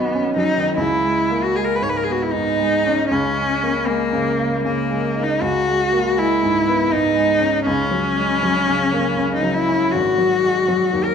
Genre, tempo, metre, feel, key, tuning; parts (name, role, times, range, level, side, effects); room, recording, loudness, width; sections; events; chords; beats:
classical, impressionist duo for cello and grand piano; 79 BPM; 3/4; rubato; C# dorian; A4 = 440 Hz
rich cello; melody; 0.0-11.1 s; A#3 to C#5; -18 LUFS; left 1 dB
clear baby grand piano; accompaniment; 0.0-11.1 s; G#1 to D#6; -21 LUFS; right 1 dB
wet recital hall reverb, RT60 1.6 s; minimal, uncompressed stereo recording; -16 LUFS; side -7 dB against mid
0.8-11.1 A section
0.0 Badd9; 0.8 C#5; 3.1 D#7sus4/C# (rootless); 5.4 C#m9; 7.7 C#sus4; 9.9 G#7(no3)
| 0.78 1.57 2.34 | 3.11 3.88 4.64 | 5.41 6.17 6.91 | 7.66 8.42 9.17 | 9.92 10.67